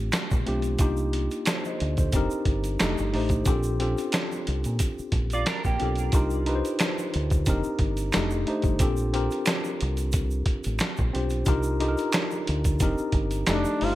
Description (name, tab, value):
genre	R&B, neo-soul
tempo	90 BPM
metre	4/4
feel	swing 55% on 16ths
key	Bb major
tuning	A4 = 440 Hz
part	mellow tine electric piano	accompaniment	0.0-13.9 s	A3 to Eb5	-28 LUFS	left 2 dB	medium stereo tremolo
part	deep dub fingered electric bass	bass	0.0-13.9 s	F1 to Bb2	-27 LUFS	equal	none
part	boom bap sampler-style drum kit	drums	0.1-13.9 s	hi-hat, kick drum, snare drum	-26 LUFS	equal	gated reverb
part	finger snaps and tube shaker	percussion	0.1-13.8 s	none	-36 LUFS	right 4 dB	none
part	semi-hollow electric guitar	second line	5.3-6.1 s	Bb3 to D5	-32 LUFS	right 4 dB	analog chorus, digital delay
part	mellow duduk	melody	13.5-13.9 s	D4 to F4	-26 LUFS	equal	none
room	light reverb, digital ambience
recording	bright 1980s-style digital production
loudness	-23 LUFS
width	side -15 dB against mid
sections	0.0-13.9 A section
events	none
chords	0.0 Bb69; 0.8 Cm9; 2.1 F9sus4; 2.8 F13; 3.5 Bb69; 6.1 Cm9; 7.5 F9sus4; 8.1 F13; 8.8 Bb69; 11.5 Cm9; 12.8 F9sus4